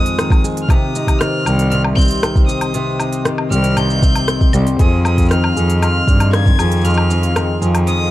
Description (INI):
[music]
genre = folktronica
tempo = 117 BPM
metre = 4/4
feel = straight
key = F minor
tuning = A4 = 442 Hz
[part]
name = clear violin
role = melody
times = 0.0-8.1 s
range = Eb6 to Ab6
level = -22 LUFS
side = left 1 dB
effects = plate reverb
[part]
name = warm analog pad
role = sustained chords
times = 0.0-8.1 s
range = F4 to C6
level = -27 LUFS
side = left 2 dB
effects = chorus, plate reverb
[part]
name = fingerpicked steel-string acoustic guitar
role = arpeggios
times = 0.0-8.1 s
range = F2 to Ab4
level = -20 LUFS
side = left 1 dB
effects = plate reverb
[part]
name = organic electronic drum kit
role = drums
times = 0.1-8.0 s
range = hi-hat, rim click, shaker, woodblock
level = -22 LUFS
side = left 1 dB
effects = overdrive
[part]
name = electronic kick drum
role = drums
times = 0.3-6.6 s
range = none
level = -13 LUFS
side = equal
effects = overdrive
[part]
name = clear cello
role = bass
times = 1.5-8.1 s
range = C2 to G2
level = -16 LUFS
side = equal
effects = none
[sound]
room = light reverb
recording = dark, warm production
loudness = -12 LUFS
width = side -15 dB against mid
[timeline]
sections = 0.0-8.1 A section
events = none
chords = 0.0 Fm7; 0.7 Cm; 4.8 Fm7